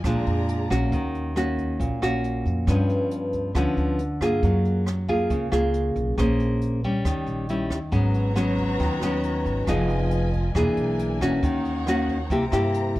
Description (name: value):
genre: bossa nova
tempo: 137 BPM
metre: 4/4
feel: straight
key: Eb minor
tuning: A4 = 440 Hz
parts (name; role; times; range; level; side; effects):
- nylon-string guitar; accompaniment; 0.0-13.0 s; G2 to C5; -23 LUFS; equal; none
- warm studio string section; sustained chords; 0.0-0.9, 7.9-13.0 s; D4 to Bb5; -34 LUFS; equal; none
- upright bass; bass; 0.0-13.0 s; E1 to G2; -26 LUFS; equal; none
- jazz brush drum kit; drums; 0.0-13.0 s; hi-hat, kick drum, rim click; -32 LUFS; right 1 dB; none
room: light reverb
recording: dark, warm production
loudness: -21 LUFS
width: side -17 dB against mid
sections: 0.9-13.0 A section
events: none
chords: 0.0 Bb7; 0.9 Ebm7; 2.7 G7#11; 4.4 Gbmaj9; 6.2 Bbm9; 7.1 Eb7b9; 7.9 Abm11; 9.7 Fm7b5; 10.6 E7#11; 11.4 Ebm7; 12.3 C7